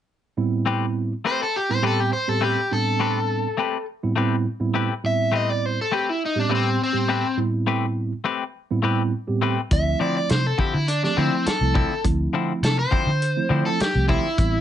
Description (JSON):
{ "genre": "straight-eighth soul blues", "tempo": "103 BPM", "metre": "4/4", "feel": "straight", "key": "A minor", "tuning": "A4 = 440 Hz", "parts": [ { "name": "mellow tine electric piano", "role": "accompaniment", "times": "0.4-14.6 s", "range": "A2 to G4", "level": "-24 LUFS", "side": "right 3 dB", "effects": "slow stereo tremolo" }, { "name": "semi-hollow electric guitar", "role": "stabs", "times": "0.7-14.3 s", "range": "D3 to B4", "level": "-26 LUFS", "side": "left 7 dB", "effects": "none" }, { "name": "overdriven semi-hollow guitar", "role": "melody", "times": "1.3-14.6 s", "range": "C4 to E5", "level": "-24 LUFS", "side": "left 1 dB", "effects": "none" }, { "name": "vintage muted fingered electric bass", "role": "bass", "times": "9.7-14.6 s", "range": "A1 to D3", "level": "-23 LUFS", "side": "equal", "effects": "none" }, { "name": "warm soul drum kit", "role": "drums", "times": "9.7-14.5 s", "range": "hi-hat, kick drum, snare drum", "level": "-24 LUFS", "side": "equal", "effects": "none" } ], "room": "moderate club reverb, RT60 0.6 s", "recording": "nothing above 10.5 kHz", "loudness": "-20 LUFS", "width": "side -10 dB against mid", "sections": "0.4-14.6 A section", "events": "none", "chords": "0.4 Am9; 9.7 Dm9", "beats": "| 0.38 0.96 1.55 2.13 | 2.71 3.30 3.88 4.46 | 5.05 5.63 6.21 6.79 | 7.38 7.96 8.54 9.13 | 9.71 10.29 10.88 11.46 | 12.04 12.63 13.21 13.80 | 14.38" }